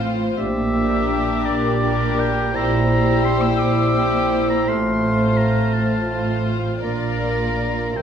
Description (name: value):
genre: classical, slow romantic movement for symphony orchestra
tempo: 56 BPM (dotted quarters)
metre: 6/8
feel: rubato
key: F major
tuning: A4 = 441 Hz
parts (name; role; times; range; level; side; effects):
- rich studio violin section; melody; 0.0-8.0 s; Bb4 to D5; -30 LUFS; left 5 dB; none
- bright silver concert flute; second line; 0.0-8.0 s; D6 to F6; -29 LUFS; left 4 dB; none
- clear oboe; second line; 0.0-8.0 s; D5 to E6; -26 LUFS; equal; none
- mellow clarinet; second line; 0.0-8.0 s; Bb4 to D5; -30 LUFS; left 3 dB; none
- warm studio violin section; second line; 0.0-7.9 s; F4 to Bb4; -30 LUFS; left 2 dB; none
- dark bassoon; accompaniment; 0.0-8.0 s; F3 to Bb3; -28 LUFS; right 1 dB; none
- rich studio viola section; accompaniment; 0.0-8.0 s; C4 to F4; -29 LUFS; right 4 dB; none
- dark French horn section; sustained chords; 0.0-8.0 s; Bb3 to G4; -26 LUFS; left 3 dB; none
- dark studio double bass section; bass; 0.0-8.0 s; A1 to C2; -25 LUFS; right 3 dB; none
- warm studio cello section; bass; 0.0-8.0 s; A2 to C3; -23 LUFS; right 2 dB; none
room: moderate scoring stage reverb, RT60 1.6 s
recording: none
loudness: -17 LUFS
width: side -8 dB against mid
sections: 0.0-8.0 A section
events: none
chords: 0.4 Gm/Bb; 2.5 C7/Bb; 4.7 F/A; 6.8 Bb